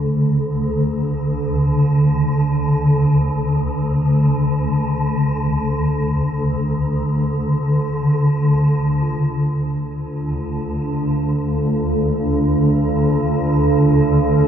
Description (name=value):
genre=dark ambient drone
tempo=free time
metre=none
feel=none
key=D minor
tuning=A4 = 435 Hz
part: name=swarming drone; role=drone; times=0.0-14.5 s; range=D2 to D3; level=-16 LUFS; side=equal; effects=built-in reverb
part: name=bronze singing bowl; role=texture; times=0.0-14.5 s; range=F4 to A4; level=-38 LUFS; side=left 1 dB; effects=none
part: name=deep dark ambient pad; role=sustained chords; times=9.7-14.5 s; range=D4 to F5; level=-20 LUFS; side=right 2 dB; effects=chorus, built-in reverb
room=moderate plate reverb, RT60 3.6 s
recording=dreamy mix soaked in reverb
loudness=-16 LUFS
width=side -9 dB against mid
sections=0.0-9.0 A section; 9.0-14.5 A section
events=fade-in on singing bowl 9.0-14.5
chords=0.0 D5; 9.0 Dm